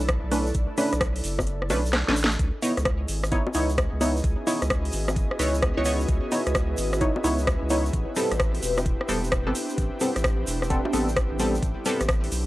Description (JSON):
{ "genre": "UK garage, two-step garage", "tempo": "130 BPM", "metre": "4/4", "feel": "swing 65% on 16ths", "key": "unclear", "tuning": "A4 = 440 Hz", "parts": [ { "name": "saturated sub bass", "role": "bass", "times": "0.0-12.5 s", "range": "E1 to C#2", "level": "-28 LUFS", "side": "equal", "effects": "none" }, { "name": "tube shaker", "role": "percussion", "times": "0.0-12.4 s", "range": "none", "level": "-38 LUFS", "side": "right 2 dB", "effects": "none" }, { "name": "ethereal airy pad", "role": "texture", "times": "0.0-12.5 s", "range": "C#4 to D5", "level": "-35 LUFS", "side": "equal", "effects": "ensemble chorus, built-in reverb, phaser, sidechain pumping" }, { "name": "electronic kick drum", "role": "drums", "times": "0.1-12.2 s", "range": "none", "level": "-27 LUFS", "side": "equal", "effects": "none" }, { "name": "garage drum kit", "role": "drums", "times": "0.1-12.4 s", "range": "bongos, hi-hat, rim click, snare drum", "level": "-28 LUFS", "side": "equal", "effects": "none" }, { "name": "punchy chord stab", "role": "stabs", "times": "0.3-12.0 s", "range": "G3 to C#5", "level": "-27 LUFS", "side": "equal", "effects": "chorus, tape echo" }, { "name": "airy breathy pad", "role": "sustained chords", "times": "2.4-12.5 s", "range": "A3 to D#5", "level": "-35 LUFS", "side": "equal", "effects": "chorus, vintage 12-bit sampler grit, sidechain pumping" } ], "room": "light reverb", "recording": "dry, gritty hardware recording", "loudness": "-22 LUFS", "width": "side -17 dB against mid", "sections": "0.0-12.5 A section", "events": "kick drops out 1.5-2.4; drum fill 1.9-2.4", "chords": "0.0 Bm9; 2.4 C#m9; 7.9 Am9" }